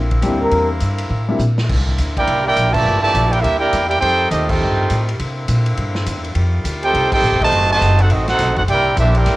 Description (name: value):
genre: jazz, big band swing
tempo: 206 BPM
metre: 4/4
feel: swing 62% on 8ths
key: unclear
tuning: A4 = 440 Hz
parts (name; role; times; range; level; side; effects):
- clear saxophone section; sustained chords; 0.0-9.4 s; D3 to F#4; -28 LUFS; left 1 dB; cassette tape
- upright bass; bass; 0.0-9.4 s; Eb1 to C3; -18 LUFS; equal; none
- swinging big-band drum kit; drums; 0.1-9.3 s; crash cymbal, hi-hat, kick drum, ride cymbal, snare drum; -26 LUFS; equal; none
- breathy trombone; melody; 0.2-0.7 s; E4 to Bb4; -20 LUFS; left 1 dB; cassette tape
- warm baby grand piano; accompaniment; 0.2-1.4 s; G3 to G4; -22 LUFS; left 2 dB; cassette tape
- clear trumpet section; melody; 2.2-9.4 s; C4 to A5; -16 LUFS; right 2 dB; cassette tape
- dark trombone section; second line; 2.2-9.4 s; Bb2 to G4; -23 LUFS; right 1 dB; cassette tape
room: small room ambience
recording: home recording on cassette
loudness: -14 LUFS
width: side -18 dB against mid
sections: 0.0-1.7 A section; 1.7-9.4 B section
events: trombone solo 0.0-1.7; drum fill 1.4; band accent 2.7, 4.5, 7.1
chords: 0.0 C9; 4.0 F9; 5.2 C9; 6.4 F9; 7.5 F#dim7; 8.7 C9